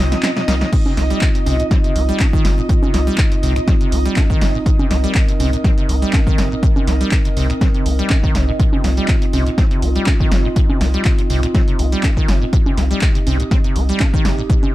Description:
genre	acid house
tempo	122 BPM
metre	4/4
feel	swing 54% on 16ths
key	C minor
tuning	A4 = 442 Hz
part	dark analog pad	sustained chords	0.0-14.7 s	C4 to Bb4	-24 LUFS	right 2 dB	wide subtle chorus, sidechain pumping
part	acid bass, saw	riff	0.0-14.7 s	Bb2 to C4	-24 LUFS	equal	wide subtle chorus, sidechain pumping, dub echo
part	round analog bass	bass	0.0-14.4 s	G1 to C2	-18 LUFS	equal	sidechain pumping
part	granular cloud pad	texture	0.0-14.7 s	Eb5	-28 LUFS	right 2 dB	built-in reverb, sidechain pumping
part	punchy analog drum machine	drums	0.1-14.7 s	congas, crash cymbal, finger snaps, handclaps, hi-hat, snare drum	-22 LUFS	equal	none
part	electronic kick drum	drums	0.7-14.6 s	none	-16 LUFS	equal	none
room	little or no reverb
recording	dark, warm production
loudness	-13 LUFS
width	side -16 dB against mid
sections	0.0-14.7 A section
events	drum fill 0.0-0.7; kick drops out 0.2-0.7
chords	0.0 Cm

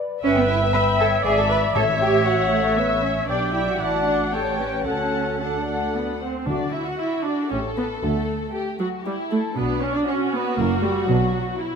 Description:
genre	quick classical-period movement for symphony orchestra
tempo	117 BPM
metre	3/4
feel	rubato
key	D major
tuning	A4 = 438 Hz
part	muted studio violin section	melody	0.0-11.6 s	F#4 to A5	-32 LUFS	left 2 dB	none
part	muted studio violin section	second line	0.0-11.8 s	D4 to G5	-29 LUFS	left 4 dB	none
part	muted chamber viola section	accompaniment	0.0-11.6 s	F#3 to E5	-26 LUFS	right 3 dB	none
part	mellow French horn section	sustained chords	0.0-11.3 s	A3 to E5	-27 LUFS	left 5 dB	none
part	mellow clarinet	second line	0.2-6.2 s	A4 to D5	-31 LUFS	left 3 dB	none
part	small flute group	second line	0.2-6.2 s	A4 to B5	-30 LUFS	left 6 dB	none
part	warm oboe	second line	0.2-6.2 s	E5 to G5	-29 LUFS	equal	none
part	muted chamber cello section	bass	0.2-11.5 s	F#2 to B4	-26 LUFS	right 4 dB	none
part	muted chamber double bass section	bass	0.2-11.5 s	F#1 to D2	-28 LUFS	right 3 dB	none
part	timpani	percussion	1.8-2.5, 6.5-7.2 s	A2 to D3	-32 LUFS	left 1 dB	none
room	moderate concert hall reverb, RT60 2.0 s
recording	none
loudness	-19 LUFS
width	side -6 dB against mid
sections	0.0-6.5 A section; 6.5-11.8 A section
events	none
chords	0.2 Em/G; 1.2 E7/G#; 1.8 A; 3.3 G/B; 3.8 D/A; 4.3 A7; 4.9 D; 7.5 A7; 8.0 D; 9.6 Bm; 10.6 F#7; 11.1 Bm

